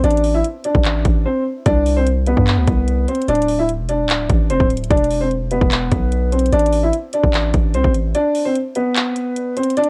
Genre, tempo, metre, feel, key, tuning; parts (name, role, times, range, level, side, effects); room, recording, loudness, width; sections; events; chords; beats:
hip hop, trap; 148 BPM; 4/4; half-time; C major; A4 = 440 Hz
felt-muted upright piano; melody; 0.0-9.9 s; B3 to E5; -20 LUFS; equal; low-pass filter
long sustained 808-style bass; bass; 0.0-8.1 s; D1 to G2; -21 LUFS; equal
trap drum kit; drums; 0.0-9.9 s; handclaps, hi-hat, kick drum; -22 LUFS; equal; cassette tape
little or no reverb; home recording on cassette; -17 LUFS; mono
0.0-9.9 A section
break 1.3-1.7, 8.1-9.9
0.0 N.C.; 1.7 Csus2; 3.3 D5; 4.9 E5; 6.5 N.C.; 8.1 Csus2
| 0.04 0.45 0.85 1.26 | 1.66 2.07 2.47 2.88 | 3.28 3.69 4.09 4.50 | 4.90 5.31 5.71 6.12 | 6.53 6.93 7.34 7.74 | 8.15 8.55 8.96 9.36 | 9.77